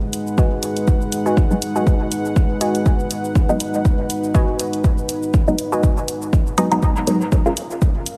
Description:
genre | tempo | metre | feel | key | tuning
dub techno | 121 BPM | 4/4 | swing 56% on 16ths | unclear | A4 = 440 Hz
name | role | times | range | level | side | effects
dark analog pad | sustained chords | 0.0-8.2 s | Ab3 to Gb5 | -26 LUFS | equal | chorus, sidechain pumping
electronic hi-hat and shaker | drums | 0.1-8.2 s | none | -31 LUFS | equal | small room reverb
warbly dusty pluck | riff | 0.4-6.7 s | Gb4 to Ab5 | -28 LUFS | equal | chorus, cassette tape, sidechain pumping, dub echo
electronic kick drum | drums | 0.4-7.9 s | none | -19 LUFS | equal | overdrive, small room reverb
filtered dub chord stab | stabs | 1.5-7.5 s | Gb3 to F4 | -23 LUFS | equal | phaser, sidechain pumping, dub echo
room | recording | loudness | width
light reverb | none | -19 LUFS | mono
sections
0.0-8.2 A section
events
filter sweep on synth stab 0.0-8.2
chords
0.0 Abm7; 7.3 Bbm7

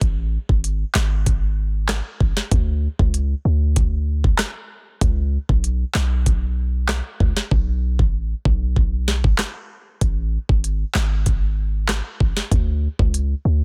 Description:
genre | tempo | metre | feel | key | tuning
dancehall | 96 BPM | 4/4 | straight | A major | A4 = 440 Hz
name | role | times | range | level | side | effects
warm 808-style bass | bass | 0.0-13.6 s | G#1 to D2 | -22 LUFS | equal | none
afro-pop drum kit | drums | 0.0-13.3 s | handclaps, hi-hat, kick drum, rim click, snare drum | -22 LUFS | equal | soft clipping on snare
room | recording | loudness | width
little or no reverb | dense, heavily limited modern master | -20 LUFS | mono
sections
0.0-13.6 A section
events
hi-hats muted 7.5-10.0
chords
none

